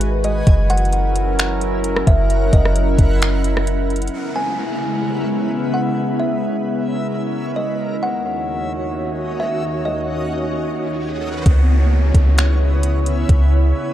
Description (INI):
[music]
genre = hip hop, atmospheric cloud-rap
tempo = 131 BPM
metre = 4/4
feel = half-time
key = C# dorian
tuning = A4 = 441 Hz
[part]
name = kalimba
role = melody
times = 0.0-11.4 s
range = D#5 to G#5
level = -25 LUFS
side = equal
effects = low-pass filter, tape echo
[part]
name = warbly tape-like pad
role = sustained chords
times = 0.0-13.9 s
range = D#2 to C#5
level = -22 LUFS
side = equal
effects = chorus, built-in reverb, sidechain pumping
[part]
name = soft 808-style bass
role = bass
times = 0.0-4.1, 11.5-13.7 s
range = F#1 to C#2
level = -16 LUFS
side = equal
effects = none
[part]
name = smooth R&B drum kit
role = drums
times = 0.0-4.1, 11.5-13.4 s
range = finger snaps, hi-hat, kick drum, rim click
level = -16 LUFS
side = equal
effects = none
[part]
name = backwards swelling texture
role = texture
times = 0.0-13.9 s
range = C#4 to G#5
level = -31 LUFS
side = left 1 dB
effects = built-in reverb
[part]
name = downlifter and riser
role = sound effects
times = 4.1-13.9 s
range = none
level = -30 LUFS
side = equal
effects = none
[sound]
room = light reverb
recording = dark, warm production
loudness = -16 LUFS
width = side -12 dB against mid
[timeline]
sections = 0.0-4.1 A section; 4.1-11.5 B section; 11.5-13.9 C section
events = riser 10.5-11.5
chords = 0.5 F#7; 4.1 C#m7; 7.8 D#m7; 11.5 C#m7